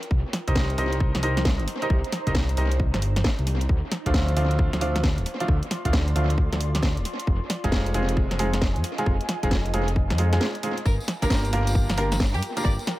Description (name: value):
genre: UK garage, two-step garage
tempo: 134 BPM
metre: 4/4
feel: swing 64% on 16ths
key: unclear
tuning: A4 = 442 Hz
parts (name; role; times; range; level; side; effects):
- garage drum kit; drums; 0.0-13.0 s; hi-hat, snare drum; -29 LUFS; equal; dub echo
- granular cloud pad; texture; 0.0-13.0 s; Eb4 to C6; -36 LUFS; right 1 dB; built-in reverb, sidechain pumping
- dark detuned saw bass; bass; 0.1-12.8 s; D1 to G2; -24 LUFS; equal; none
- electronic kick drum; drums; 0.1-12.8 s; none; -24 LUFS; equal; none
- bright baby grand piano; stabs; 0.5-12.7 s; F3 to Eb5; -28 LUFS; right 1 dB; low-pass filter, tape echo
- clear studio violin section; melody; 10.9-12.7 s; G4 to D5; -34 LUFS; equal; tape echo
- tambourine; percussion; 10.9-12.9 s; none; -38 LUFS; left 2 dB; dub echo
room: light reverb, small room ambience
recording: echo-heavy mix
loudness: -21 LUFS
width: side -17 dB against mid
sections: 0.0-13.0 A section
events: break 10.4-10.9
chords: 0.0 Cm7; 3.7 Dm7; 7.3 Fm7; 10.9 Gm7